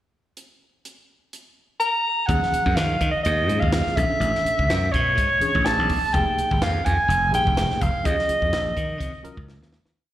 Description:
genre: electric jazz fusion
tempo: 125 BPM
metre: 4/4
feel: swing 55% on 16ths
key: unclear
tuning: A4 = 439 Hz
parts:
  - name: crisp fusion drum kit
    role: drums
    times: 0.4-9.9 s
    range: hi-hat, kick drum, snare drum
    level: -27 LUFS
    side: equal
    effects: none
  - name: mellow soprano saxophone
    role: melody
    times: 1.8-9.5 s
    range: C#5 to Bb5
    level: -22 LUFS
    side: right 1 dB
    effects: slapback echo
  - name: tine electric piano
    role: accompaniment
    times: 2.3-9.7 s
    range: E3 to Bb4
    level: -31 LUFS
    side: equal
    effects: overdrive, fast stereo tremolo, slapback echo
  - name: slap bass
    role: bass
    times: 2.3-9.9 s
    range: F1 to Eb3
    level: -24 LUFS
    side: equal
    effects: none
room: light reverb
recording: live gig heard through the venue's PA, recital hall reverb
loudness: -19 LUFS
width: side -13 dB against mid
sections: 0.4-2.3 pickup bar; 2.3-10.0 A section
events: fade-out 8.0-10.0; drum fill 9.5-10.0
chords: 0.4 N.C.; 2.3 Ebm11; 4.0 Bm11; 6.1 Fm11; 8.0 Ebm11

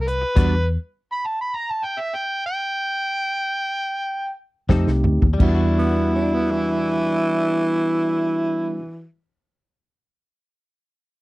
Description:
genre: straight-eighth soul blues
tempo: 83-104 BPM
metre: 4/4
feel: straight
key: E minor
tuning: A4 = 440 Hz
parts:
  - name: overdriven harmonica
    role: melody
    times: 0.0-8.8 s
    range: E4 to B5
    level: -22 LUFS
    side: equal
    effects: none
  - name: vintage muted fingered electric bass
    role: bass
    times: 0.0-0.8, 4.7-8.8 s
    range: C2 to F2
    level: -21 LUFS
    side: left 1 dB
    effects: none
  - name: direct-recorded clean electric guitar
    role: stabs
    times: 0.1-0.5, 4.7-9.0 s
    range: F3 to A4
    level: -32 LUFS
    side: left 6 dB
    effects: analog chorus
  - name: warm soul drum kit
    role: drums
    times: 0.1-0.5, 4.7-5.6 s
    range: crash cymbal, hi-hat, kick drum, snare drum, toms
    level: -19 LUFS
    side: equal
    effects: none
  - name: bell-like tine electric piano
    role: accompaniment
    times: 0.4-0.5, 4.7-8.8 s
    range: G3 to G4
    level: -25 LUFS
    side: right 2 dB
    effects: fast stereo tremolo
  - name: growling tenor saxophone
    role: second line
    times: 5.8-9.1 s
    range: E3 to D4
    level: -25 LUFS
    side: equal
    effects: none
room: little or no reverb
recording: dry, close 1970s-style studio recording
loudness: -19 LUFS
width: side -19 dB against mid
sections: 0.0-5.4 A section; 5.4-8.3 B section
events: slowing down 0.4-5.4; drum fill 4.7-5.4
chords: 0.4 Em9; 4.7 F7; 5.4 Em9

